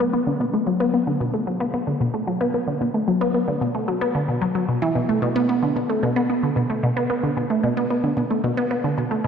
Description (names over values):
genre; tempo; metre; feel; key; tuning
ambient; 112 BPM; 4/4; straight; B minor; A4 = 439 Hz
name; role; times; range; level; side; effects
resonant blip pluck; solo; 0.0-9.3 s; B2 to B3; -20 LUFS; equal; phaser, ping-pong delay
room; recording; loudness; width
wet lush hall reverb, RT60 3.0 s; dreamy mix soaked in reverb; -20 LUFS; side -7 dB against mid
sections
0.0-9.3 A section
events
none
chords
none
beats
0.13 | 0.67 1.21 1.74 2.28 | 2.81 3.35 3.88 4.42 | 4.96 5.49 6.03 6.56 | 7.10 7.63 8.17 8.71 | 9.24